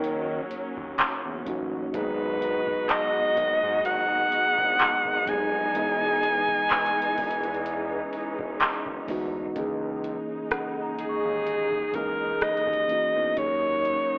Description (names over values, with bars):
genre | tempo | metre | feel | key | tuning
contemporary R&B | 63 BPM | 4/4 | swing 54% on 16ths | C# dorian | A4 = 440 Hz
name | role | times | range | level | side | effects
breathy alto saxophone | melody | 0.0-14.2 s | G#4 to G#5 | -24 LUFS | equal | none
mellow tine electric piano | accompaniment | 0.0-14.2 s | D#3 to A#4 | -32 LUFS | equal | fast stereo tremolo
dark studio string section | sustained chords | 0.0-14.2 s | C#3 to F#4 | -32 LUFS | equal | none
smooth synth bass | bass | 0.0-14.0 s | E1 to D#3 | -36 LUFS | equal | none
booming analog drum machine | drums | 0.0-14.1 s | handclaps, hi-hat, kick drum, rim click | -27 LUFS | equal | none
worn celesta | texture | 0.0-1.7, 10.5-13.7 s | C#5 to C#6 | -38 LUFS | equal | tape echo
room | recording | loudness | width
light reverb, studio reverb | worn, warbling old tape, cassette tape, warbly pitch drift, telephone sound | -23 LUFS | side -33 dB against mid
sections
0.0-9.6 A section; 9.6-14.2 B section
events
none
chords
0.0 D#m7; 1.9 G#m7; 5.7 Emaj7; 9.6 C#m69; 13.4 D#m7